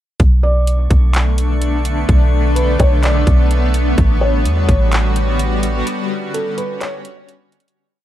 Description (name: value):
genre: hip hop, atmospheric cloud-rap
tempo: 127 BPM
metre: 4/4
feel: half-time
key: B minor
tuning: A4 = 442 Hz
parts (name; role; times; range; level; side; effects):
- shimmering ambient pad; sustained chords; 1.0-7.7 s; D3 to F#4; -21 LUFS; left 1 dB; chorus, built-in reverb, tremolo, sidechain pumping
- soft 808-style bass; bass; 0.2-5.8 s; A1 to E2; -14 LUFS; equal; none
- trap drum kit; drums; 0.2-7.8 s; handclaps, hi-hat, kick drum; -16 LUFS; equal; none
- drifting glass-harmonics texture; texture; 0.7-7.7 s; G3 to C#6; -30 LUFS; right 1 dB; chorus, built-in reverb
- felt-muted upright piano; melody; 0.4-7.3 s; A4 to D5; -23 LUFS; equal; digital delay
room: digital ambience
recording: dark, warm production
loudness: -13 LUFS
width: side -13 dB against mid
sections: 0.2-7.8 verse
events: break 5.9-7.8; fade-out 5.9-7.8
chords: 0.2 Bm9; 4.0 A13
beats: | 0.20 0.67 1.14 1.62 | 2.09 2.56 3.03 3.51 | 3.98 4.45 4.92 5.39 | 5.87 6.34 6.81 7.29